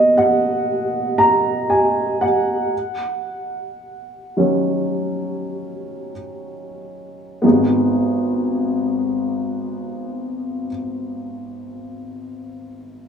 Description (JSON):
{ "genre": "pop", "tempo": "45-61 BPM", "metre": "4/4", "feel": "straight", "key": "G# minor", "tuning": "A4 = 439 Hz", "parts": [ { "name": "dark upright piano", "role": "accompaniment", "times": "0.0-13.1 s", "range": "G#1 to A#5", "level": "-18 LUFS", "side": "equal", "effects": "none" } ], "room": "moderate plate reverb, RT60 2.4 s", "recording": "small room ambience", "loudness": "-17 LUFS", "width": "side -7 dB against mid", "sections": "0.0-7.4 A section; 7.4-12.7 B section", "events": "slowing down 0.0-7.4; upright piano solo 0.0-7.4", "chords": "0.0 Bmaj7; 2.7 D#m7; 7.4 G#m7" }